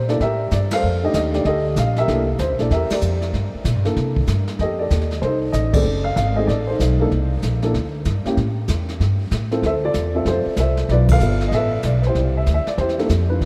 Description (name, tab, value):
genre	jazz piano trio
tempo	191 BPM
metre	4/4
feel	swing 63% on 8ths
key	C mixolydian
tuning	A4 = 440 Hz
part	dark upright piano	melody	0.0-13.5 s	A3 to F5	-24 LUFS	equal	none
part	upright bass	bass	0.0-13.5 s	F#1 to C3	-22 LUFS	equal	none
part	jazz brush drum kit	drums	0.1-13.5 s	brushed snare drum, hi-hat, kick drum, ride cymbal, snare drum	-29 LUFS	equal	none
room	moderate cathedral reverb, RT60 5.3 s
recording	in a vast, echoing space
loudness	-20 LUFS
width	mono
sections	0.0-13.5 A section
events	band accent 0.7, 2.9, 5.7, 11.0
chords	0.0 C13; 0.8 F13; 2.1 C13; 3.3 Gm7; 4.0 C13; 4.6 F13; 5.9 F#dim7; 7.1 C7sus2; 8.4 A5; 9.6 Dm7; 10.9 G13; 12.2 Cadd9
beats	0.20 0.51 | 0.83 1.14 1.46 1.77 | 2.08 2.40 2.71 3.02 | 3.34 3.65 3.97 4.28 | 4.60 4.91 5.22 5.54 | 5.85 6.17 6.48 6.80 | 7.11 7.43 7.74 8.06 | 8.37 8.69 9.00 9.32 | 9.63 9.95 10.26 10.58 | 10.89 11.21 11.52 11.84 | 12.15 12.47 12.78 13.10 | 13.41